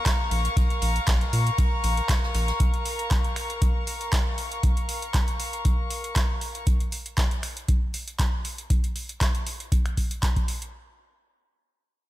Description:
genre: acid house.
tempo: 118 BPM.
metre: 4/4.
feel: swing 54% on 16ths.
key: Bb minor.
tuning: A4 = 440 Hz.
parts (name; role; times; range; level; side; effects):
dark analog pad; sustained chords; 0.0-2.6 s; Bb3 to Db5; -54 LUFS; right 4 dB; none.
dark studio string section; texture; 0.0-6.7 s; Bb4 to Db6; -30 LUFS; left 2 dB; sidechain pumping.
booming analog drum machine; drums; 0.1-10.7 s; finger snaps, handclaps, hi-hat; -31 LUFS; right 1 dB; none.
electronic kick drum; drums; 0.1-10.5 s; none; -24 LUFS; equal; none.
swinging big-band drum kit; drums; 0.1-2.6 s; ride cymbal, snare drum; -40 LUFS; left 2 dB; none.
round analog bass; bass; 0.3-2.5 s; Bb1 to Bb2; -24 LUFS; equal; sidechain pumping.
room: digital ambience.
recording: none.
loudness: -23 LUFS.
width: side -15 dB against mid.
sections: 0.0-10.7 A section.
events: none.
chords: 0.0 Bbm.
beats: 0.06 | 0.57 1.07 1.58 2.09 | 2.60 3.11 3.62 4.13 | 4.63 5.14 5.65 6.16 | 6.67 7.18 7.68 8.19 | 8.70 9.21 9.72 10.23.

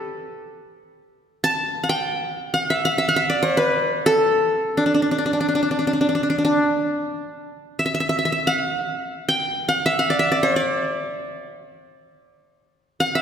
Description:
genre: Arabic maqam ensemble.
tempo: free time.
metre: none.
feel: none.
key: D maqam rast.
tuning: A4 = 440 Hz.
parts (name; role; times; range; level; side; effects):
qanun; solo; 0.0-13.2 s; D4 to A5; -19 LUFS; equal; none.
room: wet concert hall reverb, RT60 2.3 s.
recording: recorded in a church or concert hall.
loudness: -19 LUFS.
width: side -8 dB against mid.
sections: 0.0-7.2 A section; 7.2-13.2 A section.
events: none.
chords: none.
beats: free time.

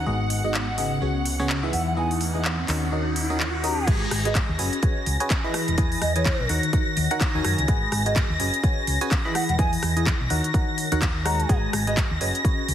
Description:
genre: piano house.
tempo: 126 BPM.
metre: 4/4.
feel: swing 59% on 16ths.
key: G# minor.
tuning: A4 = 440 Hz.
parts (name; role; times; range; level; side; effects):
clear studio violin section; sustained chords; 0.0-12.7 s; F#5 to A#6; -30 LUFS; left 1 dB; sidechain pumping.
barking FM electric piano; riff; 0.0-12.7 s; G#2 to B5; -27 LUFS; equal; phaser, sidechain pumping, ping-pong delay.
hollow-body short-scale fingered electric bass; bass; 0.0-12.7 s; E1 to F#2; -27 LUFS; equal; sidechain pumping, low-pass filter.
riser; sound effects; 1.1-3.9 s; none; -34 LUFS; right 1 dB; none.
house drum kit; drums; 0.3-12.7 s; crash cymbal, handclaps, hi-hat, rim click; -30 LUFS; equal; none.
mellow hollow concert flute; melody; 0.4-12.0 s; C#5 to A#5; -31 LUFS; right 1 dB; ping-pong delay.
electronic kick drum; drums; 3.9-12.6 s; none; -23 LUFS; equal; none.
room: light reverb.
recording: heavily compressed radio sound, multiband compression.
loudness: -21 LUFS.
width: side -10 dB against mid.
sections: 0.0-3.9 A section; 3.9-12.7 B section.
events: filter sweep on FM electric piano 0.0-3.9; riser 1.1-3.9; drop 3.9-12.7.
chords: 0.1 G#m7; 1.0 C#7sus4; 1.7 Emaj7; 2.7 D#m7; 3.9 G#m7; 4.8 C#7sus4; 5.5 Emaj7; 6.5 D#m7; 7.7 G#m7; 8.6 C#7sus4; 9.3 Emaj7; 10.3 D#m7; 11.5 G#m7.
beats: | 0.07 0.54 1.02 1.49 | 1.97 2.45 2.92 3.40 | 3.87 4.35 4.83 5.30 | 5.78 6.25 6.73 7.21 | 7.68 8.16 8.64 9.11 | 9.59 10.06 10.54 11.02 | 11.49 11.97 12.45.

